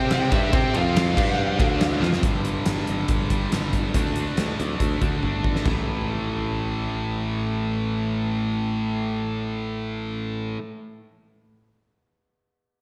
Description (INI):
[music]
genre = hard rock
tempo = 140 BPM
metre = 4/4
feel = straight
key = unclear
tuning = A4 = 440 Hz
[part]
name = lead guitar through a small cranked amp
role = melody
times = 0.0-2.0 s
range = E5 to G5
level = -31 LUFS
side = equal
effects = overdrive, slapback echo, tape echo
[part]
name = biting overdriven guitar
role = riff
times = 0.0-2.2 s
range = D3 to C5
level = -34 LUFS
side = equal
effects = none
[part]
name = distorted electric guitar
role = riff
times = 0.0-10.6 s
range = G2 to C5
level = -31 LUFS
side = equal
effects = distortion
[part]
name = tight distorted guitar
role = riff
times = 0.0-10.6 s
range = G2 to C5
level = -33 LUFS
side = equal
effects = distortion
[part]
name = modern bright picked electric bass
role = bass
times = 0.0-10.5 s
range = G1 to C3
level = -31 LUFS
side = equal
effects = none
[part]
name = huge arena drum kit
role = drums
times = 0.1-5.8 s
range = crash cymbal, hi-hat, kick drum, ride cymbal, snare drum, splash cymbal, toms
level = -27 LUFS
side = equal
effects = none
[sound]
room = moderate concert hall reverb, RT60 1.8 s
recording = big arena sound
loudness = -24 LUFS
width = mono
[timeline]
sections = 0.0-2.2 A section; 2.2-5.7 B section; 5.7-9.1 C section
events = lead electric guitar solo 0.0-2.2; drum fill 2.0, 5.2-5.7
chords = 0.3 Cadd9/G; 0.7 F5; 1.2 G5; 1.6 D5; 2.2 G5; 3.9 D5; 5.7 A5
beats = 0.11 | 0.53 0.96 1.39 1.81 | 2.24 2.66 3.09 3.52 | 3.94 4.37 4.80 5.23 | 5.65 6.08 6.51 6.94 | 7.36 7.79 8.22 8.65